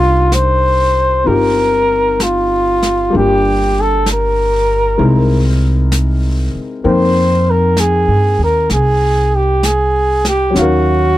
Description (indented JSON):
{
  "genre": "jazz ballad",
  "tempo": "64 BPM",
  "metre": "4/4",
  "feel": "swing 68% on 8ths",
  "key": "C minor",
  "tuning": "A4 = 440 Hz",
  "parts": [
    { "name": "breathy trumpet", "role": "melody", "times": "0.0-11.2 s", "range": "F4 to C5", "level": "-13 LUFS", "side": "equal", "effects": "none" },
    { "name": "warm grand piano", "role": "accompaniment", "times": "0.0-11.2 s", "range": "Gb3 to G5", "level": "-19 LUFS", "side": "left 4 dB", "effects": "none" },
    { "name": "upright bass", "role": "bass", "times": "0.0-11.2 s", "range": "G1 to G2", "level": "-15 LUFS", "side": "equal", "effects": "none" },
    { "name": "jazz brush drum kit", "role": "drums", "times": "0.3-11.2 s", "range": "brushed snare drum, hi-hat, snare drum", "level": "-24 LUFS", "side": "equal", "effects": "none" }
  ],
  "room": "light reverb",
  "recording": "dry, close 1970s-style studio recording",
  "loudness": "-11 LUFS",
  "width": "side -14 dB against mid",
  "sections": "0.0-11.2 A section",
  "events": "none",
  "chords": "0.0 Cm11; 3.1 Gm7; 5.0 C7alt; 6.8 F9sus4; 10.6 Ebm7",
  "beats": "0.32 1.26 2.20 | 3.13 4.06 4.99 5.91 | 6.84 7.77 8.70 9.63 | 10.56"
}